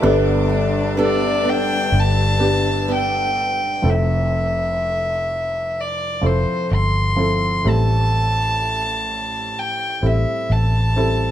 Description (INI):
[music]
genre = acoustic folk-pop ballad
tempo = 63 BPM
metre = 4/4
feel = straight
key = unclear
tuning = A4 = 442 Hz
[part]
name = warm cello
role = second line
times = 0.0-3.4 s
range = D4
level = -28 LUFS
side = left 4 dB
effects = none
[part]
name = felt-muted upright piano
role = accompaniment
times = 0.0-11.3 s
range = F1 to A4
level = -22 LUFS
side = equal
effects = none
[part]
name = warm chamber string section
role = sustained chords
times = 0.0-3.8 s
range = G4 to E6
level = -30 LUFS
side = left 5 dB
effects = none
[part]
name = picked swing-style acoustic guitar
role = arpeggios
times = 0.0-3.9 s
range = B3 to A4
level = -26 LUFS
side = right 3 dB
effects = none
[part]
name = vintage muted fingered electric bass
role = bass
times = 0.0-11.3 s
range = F1 to A1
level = -20 LUFS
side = equal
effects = none
[part]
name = warm violin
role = melody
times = 1.0-11.3 s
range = C5 to C6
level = -21 LUFS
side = equal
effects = none
[sound]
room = moderate studio reverb, RT60 0.8 s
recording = none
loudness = -17 LUFS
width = side -11 dB against mid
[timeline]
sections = 0.0-3.8 A section; 3.8-11.3 B section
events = none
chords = 0.0 Gadd9; 3.8 Fmaj7; 7.7 Am7